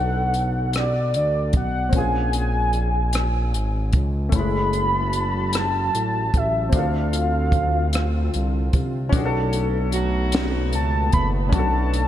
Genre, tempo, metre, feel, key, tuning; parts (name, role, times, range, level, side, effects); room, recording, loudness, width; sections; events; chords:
slow six-eight R&B; 50 BPM (dotted quarters); 6/8; straight; A4 = 444 Hz
warm velvety synth lead; melody; 0.0-12.1 s; D5 to B5; -25 LUFS; equal; chorus, ping-pong delay
warm grand piano; accompaniment; 0.0-12.1 s; G#3 to A4; -29 LUFS; left 4 dB; analog chorus
smooth synth bass; bass; 0.0-12.1 s; F#1 to D2; -23 LUFS; equal
compact cocktail drum kit; drums; 0.3-12.1 s; hi-hat, kick drum, rim click, snare drum; -23 LUFS; equal
warm analog pad; sustained chords; 4.3-12.1 s; B2 to A5; -31 LUFS; right 1 dB; chorus
warm horn section; stabs; 9.9-11.1 s; F#3 to F#4; -30 LUFS; right 3 dB; ping-pong delay
light reverb; bright 1980s-style digital production; -19 LUFS; side -11 dB against mid
0.0-9.1 A section; 9.1-12.1 B section
0.0 Bm7; 1.9 A#m9; 4.3 F#m9; 6.7 Dm7; 9.1 Bm9